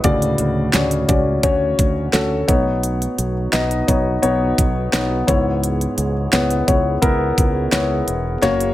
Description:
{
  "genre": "piano-driven pop",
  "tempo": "86 BPM",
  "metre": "4/4",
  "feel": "straight",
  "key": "unclear",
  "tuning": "A4 = 442 Hz",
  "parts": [
    { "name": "dark upright piano", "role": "accompaniment", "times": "0.0-8.7 s", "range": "G#2 to B5", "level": "-18 LUFS", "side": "left 2 dB", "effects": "none" },
    { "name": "glass harmonica", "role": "sustained chords", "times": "0.0-8.7 s", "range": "A3 to C#5", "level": "-30 LUFS", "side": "right 4 dB", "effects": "none" },
    { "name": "fingered electric bass", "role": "bass", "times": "0.0-8.7 s", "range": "E1 to D2", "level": "-22 LUFS", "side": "right 1 dB", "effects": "none" },
    { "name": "pop drum kit", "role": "drums", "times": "0.0-8.7 s", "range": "hi-hat, kick drum, snare drum", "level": "-19 LUFS", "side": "right 1 dB", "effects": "none" }
  ],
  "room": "moderate studio reverb, RT60 0.7 s",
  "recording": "none",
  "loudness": "-16 LUFS",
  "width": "side -14 dB against mid",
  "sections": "0.0-8.7 A section",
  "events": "drum fill 8.4-8.7",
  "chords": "0.0 Dmaj7; 2.5 Badd9; 5.3 C#m7",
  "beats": "| 0.04 0.74 1.44 2.14 | 2.84 3.54 4.23 4.93 | 5.63 6.33 7.03 7.72 | 8.42"
}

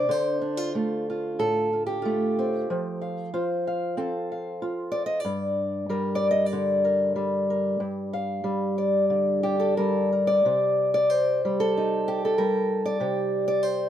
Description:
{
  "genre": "folk, solo fingerstyle acoustic guitar",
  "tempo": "93 BPM",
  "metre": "4/4",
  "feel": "rubato",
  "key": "G minor",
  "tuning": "A4 = 440 Hz",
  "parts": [
    { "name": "fingerpicked old ladder-braced acoustic guitar", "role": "solo", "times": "0.0-13.9 s", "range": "G2 to F5", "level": "-23 LUFS", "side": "equal", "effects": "none" }
  ],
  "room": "moderate studio reverb, RT60 0.5 s",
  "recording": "band playing live in one room",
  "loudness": "-23 LUFS",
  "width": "side -10 dB against mid",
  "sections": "0.0-10.4 A section; 10.4-13.9 B section",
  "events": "none",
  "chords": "0.1 Dm7; 2.7 F; 5.2 Gm; 10.4 Cmadd9",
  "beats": "| 0.09 0.74 1.39 2.04 | 2.68 3.32 3.96 4.59 | 5.23 5.87 6.51 7.14 | 7.79 8.43 9.09 9.77 | 10.44 11.10 11.74 12.38 | 13.01 13.64"
}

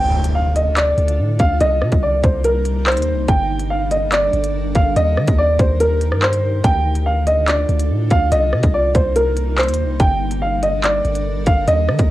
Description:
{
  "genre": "hip hop, drill",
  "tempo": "143 BPM",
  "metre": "4/4",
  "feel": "half-time",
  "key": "unclear",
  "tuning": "A4 = 440 Hz",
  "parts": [
    { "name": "warm baby grand piano", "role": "melody", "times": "0.0-12.1 s", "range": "Bb4 to G5", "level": "-18 LUFS", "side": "equal", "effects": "low-pass filter, cassette tape" },
    { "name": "granular cloud pad", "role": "sustained chords", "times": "0.5-12.1 s", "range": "C3 to Bb4", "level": "-27 LUFS", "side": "equal", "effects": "built-in reverb, cassette tape" },
    { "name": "long sustained 808-style bass", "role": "bass", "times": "0.0-12.1 s", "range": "G1 to Eb3", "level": "-19 LUFS", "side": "equal", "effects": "none" },
    { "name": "impact", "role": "sound effects", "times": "0.0-1.6 s", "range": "none", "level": "-27 LUFS", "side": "equal", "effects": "none" },
    { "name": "drill drum kit", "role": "drums", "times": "0.2-12.1 s", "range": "handclaps, hi-hat, kick drum, rim click", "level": "-18 LUFS", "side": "equal", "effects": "cassette tape" }
  ],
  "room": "little or no reverb",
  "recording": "home recording on cassette",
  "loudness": "-14 LUFS",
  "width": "side -15 dB against mid",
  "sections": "0.0-12.1 A section",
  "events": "impact 0.0-1.6",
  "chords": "0.0 Dm; 1.6 Cm7; 3.3 Gmadd9; 5.0 Eb; 6.6 Dm; 8.3 Cm7; 10.0 Gmadd9",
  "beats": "0.35 0.77 1.19 | 1.61 2.03 2.45 2.87 | 3.29 3.71 4.12 4.54 | 4.96 5.38 5.80 6.22 | 6.64 7.06 7.48 7.90 | 8.32 8.74 9.16 9.58 | 10.00 10.42 10.84 11.26 | 11.68 12.10"
}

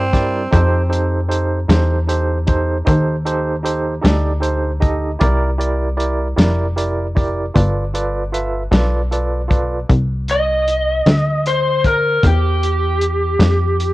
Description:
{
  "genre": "slow blues",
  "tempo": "51 BPM (dotted quarters)",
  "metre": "12/8",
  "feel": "straight",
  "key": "unclear",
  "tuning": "A4 = 440 Hz",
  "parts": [
    { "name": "growling tenor saxophone", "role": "second line", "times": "0.0-1.3 s", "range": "C4", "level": "-22 LUFS", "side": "right 2 dB", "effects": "none" },
    { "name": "barky tine electric piano", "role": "accompaniment", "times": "0.0-9.8 s", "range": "Eb4 to E5", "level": "-20 LUFS", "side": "right 2 dB", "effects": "fast tremolo" },
    { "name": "plucky analog bass", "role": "bass", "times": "0.0-13.9 s", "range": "F1 to G2", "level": "-18 LUFS", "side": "equal", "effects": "none" },
    { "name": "warm soul drum kit", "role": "drums", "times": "0.1-13.9 s", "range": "hi-hat, kick drum, snare drum", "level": "-17 LUFS", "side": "equal", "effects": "none" },
    { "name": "lead guitar through a small cranked amp", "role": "melody", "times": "10.3-13.9 s", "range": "G4 to Eb5", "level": "-16 LUFS", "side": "equal", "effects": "overdrive" }
  ],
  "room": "light reverb, small room ambience",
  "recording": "worn, warbling old tape, cassette tape, warbly pitch drift",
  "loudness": "-14 LUFS",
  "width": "side -18 dB against mid",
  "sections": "0.0-9.9 A section; 9.9-13.9 B section",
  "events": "lead electric guitar solo 9.9-13.9",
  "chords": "0.0 C7; 0.5 F7; 5.2 C7; 7.5 G7; 9.9 C",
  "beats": "| 0.51 1.69 2.86 4.03 | 5.20 6.37 7.54 8.71 | 9.89 11.06 12.23 13.40"
}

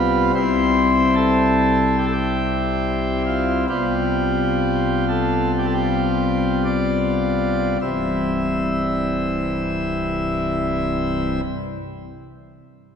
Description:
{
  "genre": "classical, chorale-style piece for pipe organ",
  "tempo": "52-76 BPM",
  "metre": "4/4",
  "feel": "rubato",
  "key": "C major",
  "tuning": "A4 = 440 Hz",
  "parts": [
    { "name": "pipe organ, principal chorus", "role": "solo", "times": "0.0-11.4 s", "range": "C1 to E5", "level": "-18 LUFS", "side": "left 1 dB", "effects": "none" }
  ],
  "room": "wet church reverb, RT60 2.8 s",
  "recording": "minimal, uncompressed stereo recording",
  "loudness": "-18 LUFS",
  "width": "side -7 dB against mid",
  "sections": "0.0-7.8 A section; 7.8-12.4 B section",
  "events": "slowing down 0.0-7.8",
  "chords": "0.4 C; 3.7 G7/C; 7.8 C",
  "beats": "| 0.35 1.17 1.99 2.83 | 3.70 4.62 5.59 6.67 | 7.82 8.95 10.08 11.21"
}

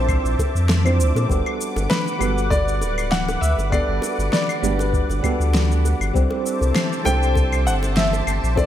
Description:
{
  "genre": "sunset chillout",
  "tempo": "99 BPM",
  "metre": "4/4",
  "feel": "swing 54% on 16ths",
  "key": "G major",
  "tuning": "A4 = 440 Hz",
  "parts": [
    { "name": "clear grand piano", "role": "melody", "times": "0.0-8.7 s", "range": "B4 to G5", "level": "-26 LUFS", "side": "equal", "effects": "ping-pong delay" },
    { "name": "flamenco guitar", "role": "accompaniment", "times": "0.0-8.7 s", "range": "F3 to C5", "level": "-25 LUFS", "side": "right 1 dB", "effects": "auto-pan, digital delay" },
    { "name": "lush unison pad", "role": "sustained chords", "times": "0.0-8.7 s", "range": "B4 to D6", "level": "-29 LUFS", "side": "left 1 dB", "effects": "chorus, phaser" },
    { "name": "warm sub bass", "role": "bass", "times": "0.0-8.7 s", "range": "D1 to Bb2", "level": "-20 LUFS", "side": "equal", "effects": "tube saturation" },
    { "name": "electronic claves, shaker and snare drum", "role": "drums", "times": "0.1-8.7 s", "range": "none", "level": "-25 LUFS", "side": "left 1 dB", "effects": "overdrive, small room ambience, gated reverb" },
    { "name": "electronic kick drum", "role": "drums", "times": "0.1-8.7 s", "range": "none", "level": "-23 LUFS", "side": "equal", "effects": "small room ambience" },
    { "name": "bongos", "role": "percussion", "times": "0.4-8.7 s", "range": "none", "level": "-33 LUFS", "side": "equal", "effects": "none" }
  ],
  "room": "light reverb, small room ambience",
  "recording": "bright 1980s-style digital production",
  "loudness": "-18 LUFS",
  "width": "side -11 dB against mid",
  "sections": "0.0-8.7 A section",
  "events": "none",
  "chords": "0.0 Bbmaj9#11; 1.3 Gmaj7; 6.1 C69",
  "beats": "0.09 0.69 | 1.30 1.91 2.51 3.12 | 3.72 4.33 4.93 5.54 | 6.15 6.75 7.36 7.96 | 8.57"
}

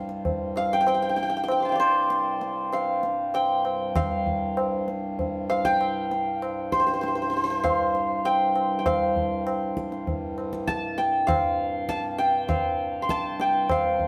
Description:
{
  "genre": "indian classical, Hindustani",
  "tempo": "98 BPM",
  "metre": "4/4",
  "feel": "straight",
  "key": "C raga durga",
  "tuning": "A4 = 438 Hz",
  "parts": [
    { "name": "santur", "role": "melody", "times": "0.0-14.1 s", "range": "C5 to F6", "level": "-27 LUFS", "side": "equal", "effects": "none" },
    { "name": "hand-pumped harmonium", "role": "drone", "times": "0.0-14.1 s", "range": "C2 to G2", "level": "-35 LUFS", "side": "equal", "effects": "none" },
    { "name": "tabla", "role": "percussion", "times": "0.1-14.1 s", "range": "none", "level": "-31 LUFS", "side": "equal", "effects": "none" }
  ],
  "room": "moderate stone room reverb, RT60 1.0 s",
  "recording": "band playing live in one room",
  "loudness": "-25 LUFS",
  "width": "mono",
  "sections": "0.0-13.7 A section",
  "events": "speeding up 0.0-14.1",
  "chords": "none",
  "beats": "0.25 0.87 | 1.49 2.11 2.73 3.34 | 3.96 4.57 5.19 5.80 | 6.42 7.03 7.64 8.25 | 8.86 9.46 10.07 10.68 | 11.28 11.89 12.49 13.09 | 13.69"
}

